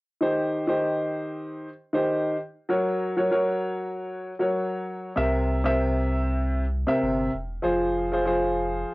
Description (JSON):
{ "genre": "hip hop", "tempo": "97 BPM", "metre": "4/4", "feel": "swing 55% on 16ths", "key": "unclear", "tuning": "A4 = 440 Hz", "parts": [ { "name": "warm upright piano", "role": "accompaniment", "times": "0.2-8.9 s", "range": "C3 to E5", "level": "-24 LUFS", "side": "equal", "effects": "cassette tape, high-pass filter, low-pass filter" }, { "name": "saturated sub bass", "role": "bass", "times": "5.2-8.8 s", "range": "E1 to C2", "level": "-28 LUFS", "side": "equal", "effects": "none" } ], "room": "moderate studio reverb, RT60 0.5 s", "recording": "home recording on cassette", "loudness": "-23 LUFS", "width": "side -22 dB against mid", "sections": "0.2-8.9 A section", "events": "none", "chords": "0.2 Eb6; 2.7 Gb; 5.2 C7; 7.6 Fm" }